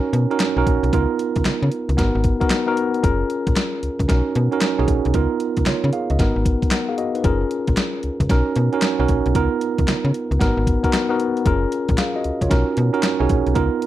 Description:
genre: R&B, new jack swing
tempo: 114 BPM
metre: 4/4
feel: swing 64% on 16ths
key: unclear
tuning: A4 = 440 Hz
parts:
  - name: tine electric piano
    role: accompaniment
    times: 0.0-13.9 s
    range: B3 to F#5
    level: -20 LUFS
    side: moving between left 5 dB and right 8 dB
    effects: auto-pan
  - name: slap-like FM bass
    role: bass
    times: 0.1-13.7 s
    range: F#1 to C#3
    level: -20 LUFS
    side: equal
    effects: none
  - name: gated 80s digital drum machine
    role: drums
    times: 0.1-13.9 s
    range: handclaps, hi-hat, kick drum, snare drum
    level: -21 LUFS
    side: left 1 dB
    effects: gated reverb, gated reverb snare
room: little or no reverb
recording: dry, close 1970s-style studio recording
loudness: -17 LUFS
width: side -13 dB against mid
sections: 0.0-13.9 A section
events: none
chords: 0.0 Bmaj7; 0.9 C#13; 2.0 G#m7; 3.0 F#maj7; 4.1 Bmaj7; 5.1 C#13; 6.2 G#m7; 7.2 F#maj7; 8.3 Bmaj7; 9.3 C#13; 10.4 G#m7; 11.5 F#maj7; 12.5 Bmaj7

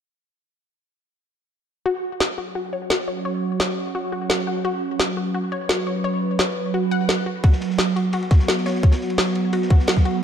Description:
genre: dark technical drum and bass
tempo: 172 BPM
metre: 4/4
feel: straight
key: unclear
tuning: A4 = 440 Hz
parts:
  - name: sweeping resonant pad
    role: sustained chords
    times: 1.9-10.2 s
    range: F#3 to B4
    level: -24 LUFS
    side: right 3 dB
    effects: chorus, sidechain pumping
  - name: analog pluck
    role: arpeggios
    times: 1.9-10.2 s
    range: F#4 to F#5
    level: -27 LUFS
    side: left 3 dB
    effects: chorus, sidechain pumping, ping-pong delay
  - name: electronic snare drum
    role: drums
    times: 2.2-9.9 s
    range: none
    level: -23 LUFS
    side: equal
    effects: none
  - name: crunchy breakbeat drum kit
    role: drums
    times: 7.4-10.1 s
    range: ride cymbal, snare drum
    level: -35 LUFS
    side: equal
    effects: high-pass filter on cymbals, high-pass filter on snare, high-pass filter on room
  - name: electronic kick drum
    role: drums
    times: 7.4-10.0 s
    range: none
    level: -14 LUFS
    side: equal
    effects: none
room: moderate lush hall reverb, RT60 2.0 s, studio reverb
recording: dark, warm production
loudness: -19 LUFS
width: side -8 dB against mid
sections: 1.9-10.2 A section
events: filter sweep on synth arpeggio sound 1.9-10.2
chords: 1.9 F#5

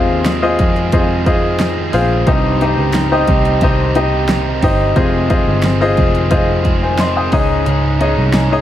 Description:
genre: piano-driven pop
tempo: 89 BPM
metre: 4/4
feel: straight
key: F minor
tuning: A4 = 440 Hz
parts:
  - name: clear baby grand piano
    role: accompaniment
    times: 0.0-8.6 s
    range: G2 to Eb6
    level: -16 LUFS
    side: left 2 dB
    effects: none
  - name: biting overdriven guitar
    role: riff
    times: 0.0-8.6 s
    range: F2 to Ab4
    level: -21 LUFS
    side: right 4 dB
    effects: none
  - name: vintage muted picked electric bass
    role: bass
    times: 0.0-8.6 s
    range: F1 to F2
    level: -17 LUFS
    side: equal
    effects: none
  - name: deep house drum kit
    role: drums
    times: 0.3-8.5 s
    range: hi-hat, kick drum, snare drum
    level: -17 LUFS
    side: equal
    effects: none
  - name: group handclap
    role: percussion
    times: 0.3-8.5 s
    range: none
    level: -33 LUFS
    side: left 3 dB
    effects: none
room: digital ambience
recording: none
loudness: -12 LUFS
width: side -12 dB against mid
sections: 0.0-8.6 A section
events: none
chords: 0.0 Fm7; 2.3 Cm; 5.0 Fm7; 7.3 Dbsus2

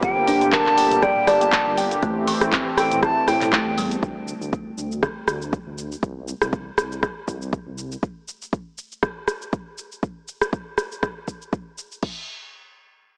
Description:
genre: afro house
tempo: 120 BPM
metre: 4/4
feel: swing 55% on 16ths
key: unclear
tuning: A4 = 441 Hz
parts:
  - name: breathy silver concert flute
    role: melody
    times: 0.0-3.8 s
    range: G5 to A5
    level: -24 LUFS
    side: equal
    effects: analog delay
  - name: warm analog pad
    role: sustained chords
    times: 0.0-4.0 s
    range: D3 to G4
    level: -28 LUFS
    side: equal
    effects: chorus, tremolo, sidechain pumping
  - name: kalimba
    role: arpeggios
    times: 0.0-3.9 s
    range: E3 to G5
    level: -26 LUFS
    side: equal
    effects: sidechain pumping
  - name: dark detuned saw bass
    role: bass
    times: 0.0-8.0 s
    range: G1 to A2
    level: -33 LUFS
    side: equal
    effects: sidechain pumping
  - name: afro-pop drum kit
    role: drums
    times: 0.0-12.1 s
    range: crash cymbal, handclaps, hi-hat, rim click, shaker, toms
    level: -27 LUFS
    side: equal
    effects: none
  - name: electronic kick drum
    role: drums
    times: 0.0-12.1 s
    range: none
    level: -28 LUFS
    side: equal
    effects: none
room: light reverb, digital ambience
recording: dry, gritty hardware recording, transformer saturation, small speaker sound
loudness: -23 LUFS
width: mono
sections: 0.0-4.0 A section; 4.0-12.0 B section; 12.0-13.2 C section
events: drop 0.0-4.0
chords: 0.0 Gm; 2.0 Am7; 4.0 N.C.

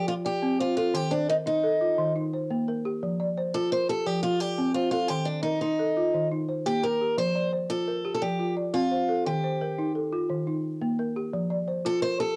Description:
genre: west african traditional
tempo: 116 BPM (dotted quarters)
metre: 12/8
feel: straight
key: unclear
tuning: A4 = 444 Hz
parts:
  - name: picked steel-string acoustic guitar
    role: melody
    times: 0.0-12.4 s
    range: D4 to C5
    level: -29 LUFS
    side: equal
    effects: cassette tape
  - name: balafon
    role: arpeggios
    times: 0.0-12.4 s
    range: Eb3 to D5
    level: -30 LUFS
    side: equal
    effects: cassette tape
room: light reverb, small room ambience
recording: home recording on cassette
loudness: -27 LUFS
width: mono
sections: 0.0-12.4 A section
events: none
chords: 0.0 F; 0.9 Eb5; 3.0 F5; 5.1 Eb5; 7.2 F; 9.3 Eb; 11.3 F

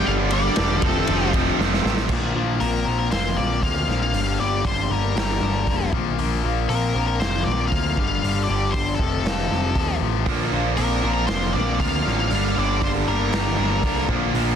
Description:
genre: quiet-loud alternative rock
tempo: 118 BPM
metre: 4/4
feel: straight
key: G minor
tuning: A4 = 440 Hz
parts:
  - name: octave-fuzz lead guitar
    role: melody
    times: 0.0-14.1 s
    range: A4 to F5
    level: -27 LUFS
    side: left 3 dB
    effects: distortion, digital delay
  - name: tight distorted guitar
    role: riff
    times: 0.0-14.6 s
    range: F2 to Bb3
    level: -26 LUFS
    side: left 15 dB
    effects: distortion
  - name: tight distorted guitar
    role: riff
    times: 0.0-2.1, 10.3-14.6 s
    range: F2 to D4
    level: -25 LUFS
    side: right 18 dB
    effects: distortion
  - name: growling picked electric bass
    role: bass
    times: 0.1-14.6 s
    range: E1 to Eb2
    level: -24 LUFS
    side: right 1 dB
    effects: overdrive
  - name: raw garage drum kit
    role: drums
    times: 0.3-14.5 s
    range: crash cymbal, hi-hat, kick drum, ride cymbal, snare drum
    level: -26 LUFS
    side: right 1 dB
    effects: none
  - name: electric guitar through a small old amp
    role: arpeggios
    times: 2.1-14.6 s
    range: F2 to G4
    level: -30 LUFS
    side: left 1 dB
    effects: spring reverb, digital delay
room: little or no reverb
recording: dense, heavily limited modern master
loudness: -19 LUFS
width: side -8 dB against mid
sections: 0.0-2.1 A section; 2.1-14.6 B section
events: drum fill 1.6-2.1; half time 2.1-14.6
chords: 0.0 Gm; 0.8 F; 2.1 Bbadd9; 4.1 Gm7; 5.9 Bbadd9; 8.0 G5; 9.0 F; 10.3 Bbadd9; 12.3 Gm

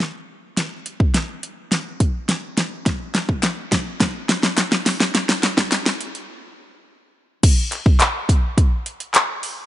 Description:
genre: pop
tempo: 105 BPM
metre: 4/4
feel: straight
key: none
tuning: none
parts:
  - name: pop drum kit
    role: drums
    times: 0.0-9.6 s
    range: crash cymbal, handclaps, hi-hat, kick drum, snare drum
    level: -17 LUFS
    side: equal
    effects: none
  - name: group handclap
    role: percussion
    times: 3.1-9.3 s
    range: none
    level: -28 LUFS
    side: left 3 dB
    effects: none
room: light reverb, digital ambience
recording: high-pass filter, nothing above 10.8 kHz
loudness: -17 LUFS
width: side -14 dB against mid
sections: 0.0-7.4 A section; 7.4-9.7 B section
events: build-up 0.0-7.4; drum fill 0.0-6.3; break 6.3-7.4; drop 7.4-9.7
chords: none

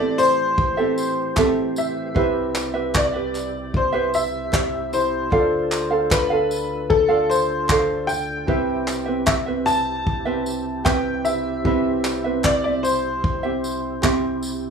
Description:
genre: acoustic pop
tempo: 76 BPM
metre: 4/4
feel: straight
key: C major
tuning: A4 = 439 Hz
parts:
  - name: bright upright piano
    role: melody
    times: 0.0-14.4 s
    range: A4 to A5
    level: -23 LUFS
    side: left 3 dB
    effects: digital delay
  - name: ukulele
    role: accompaniment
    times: 0.0-14.7 s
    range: C4 to F5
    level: -24 LUFS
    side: right 7 dB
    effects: none
  - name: warm concert grand piano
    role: accompaniment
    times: 0.0-14.7 s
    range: C4 to B5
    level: -30 LUFS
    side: left 10 dB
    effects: none
  - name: overdriven tonewheel organ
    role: sustained chords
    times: 0.0-14.7 s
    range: C2 to C5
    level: -30 LUFS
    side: equal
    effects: chorus vibrato, slow rotary speaker
  - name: unplugged drum kit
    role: drums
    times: 0.2-14.6 s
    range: handclaps, kick drum, tambourine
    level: -24 LUFS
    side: left 1 dB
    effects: none
  - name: group handclap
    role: percussion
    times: 1.4-14.2 s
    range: none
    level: -37 LUFS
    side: right 3 dB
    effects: none
room: light reverb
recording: rough home demo mix, small room ambience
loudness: -19 LUFS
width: side -6 dB against mid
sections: 0.0-14.7 A section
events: none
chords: 0.0 Am7; 2.2 Cmaj7; 5.3 Dm; 8.5 Cmaj7

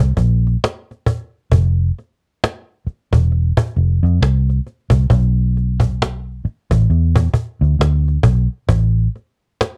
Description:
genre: R&B, neo-soul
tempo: 67 BPM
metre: 4/4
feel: swing 60% on 16ths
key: unclear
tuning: A4 = 440 Hz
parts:
  - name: vintage muted fingered electric bass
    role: bass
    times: 0.0-9.1 s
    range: E1 to F2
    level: -16 LUFS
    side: equal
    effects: none
  - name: cajon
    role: drums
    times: 0.0-9.8 s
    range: none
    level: -19 LUFS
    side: equal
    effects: none
room: little or no reverb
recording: worn, warbling old tape, cassette tape, warbly pitch drift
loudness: -17 LUFS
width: mono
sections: 0.0-9.8 A section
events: none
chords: none

